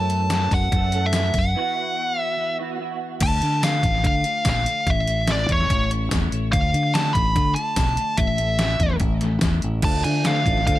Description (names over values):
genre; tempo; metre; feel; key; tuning
indie rock; 145 BPM; 4/4; straight; unclear; A4 = 440 Hz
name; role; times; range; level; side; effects
nasal lead guitar with a parked wah; melody; 0.0-10.8 s; C#5 to B5; -23 LUFS; equal; overdrive, tape echo
electric guitar through a small old amp; riff; 0.0-3.2, 9.8-10.8 s; E3 to A4; -30 LUFS; right 6 dB; ensemble chorus
twelve-string electric guitar; riff; 0.0-10.8 s; A2 to C#5; -33 LUFS; left 8 dB; none
fingered electric bass; bass; 0.0-10.8 s; A1 to D3; -23 LUFS; equal; none
detuned 8-bit digital drum machine; drums; 0.1-10.8 s; crash cymbal, hi-hat, kick drum, snare drum, tambourine; -23 LUFS; equal; none
tambourine; percussion; 0.1-10.3 s; none; -40 LUFS; left 11 dB; none
room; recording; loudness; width
light reverb; dark, warm production; -19 LUFS; side -15 dB against mid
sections
0.0-3.2 A section; 3.2-10.8 B section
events
break 1.6-3.2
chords
0.0 F#m7; 1.6 Esus2; 3.2 Dm; 4.9 A; 6.5 Dm; 8.2 A; 9.8 Dm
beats
0.32 0.73 1.15 | 1.56 1.98 2.39 2.80 | 3.22 3.63 4.05 4.46 | 4.88 5.29 5.70 6.12 | 6.53 6.95 7.36 7.77 | 8.19 8.60 9.01 9.43 | 9.84 10.26 10.67